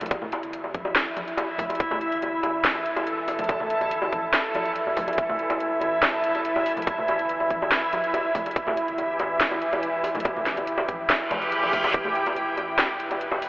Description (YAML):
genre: deep dubstep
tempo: 142 BPM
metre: 4/4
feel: half-time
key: E minor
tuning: A4 = 441 Hz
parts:
  - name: deep dark ambient pad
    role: sustained chords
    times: 0.1-13.5 s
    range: E4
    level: -28 LUFS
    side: right 1 dB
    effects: chorus, built-in reverb
  - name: garage drum kit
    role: drums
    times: 0.0-13.5 s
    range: hi-hat, snare drum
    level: -28 LUFS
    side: equal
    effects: overdrive
  - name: congas and bongos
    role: percussion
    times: 0.0-13.4 s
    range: none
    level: -30 LUFS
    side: left 1 dB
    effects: dub echo
  - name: backwards swelling texture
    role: texture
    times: 0.0-13.5 s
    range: E3 to B4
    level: -28 LUFS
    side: equal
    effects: built-in reverb
  - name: electronic kick drum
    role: drums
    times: 0.1-12.0 s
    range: none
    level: -26 LUFS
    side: equal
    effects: overdrive
  - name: soft dub sub bass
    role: bass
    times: 0.4-13.5 s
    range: E1 to A1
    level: -49 LUFS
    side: equal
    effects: none
  - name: reverse cymbal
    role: sound effects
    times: 11.3-11.9 s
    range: none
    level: -30 LUFS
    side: equal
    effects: none
room: wet huge ambient reverb, RT60 8.4 s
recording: dreamy mix soaked in reverb, vinyl crackle, telephone sound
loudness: -22 LUFS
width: side -21 dB against mid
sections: 0.0-13.5 A section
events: reverse cymbal 11.3-11.9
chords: 0.0 Em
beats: | 0.11 0.53 0.96 1.38 | 1.80 2.22 2.65 3.07 | 3.49 3.91 4.34 4.76 | 5.18 5.60 6.03 6.45 | 6.87 7.29 7.72 8.14 | 8.56 8.98 9.41 9.83 | 10.25 10.67 11.10 11.52 | 11.94 12.36 12.79 13.21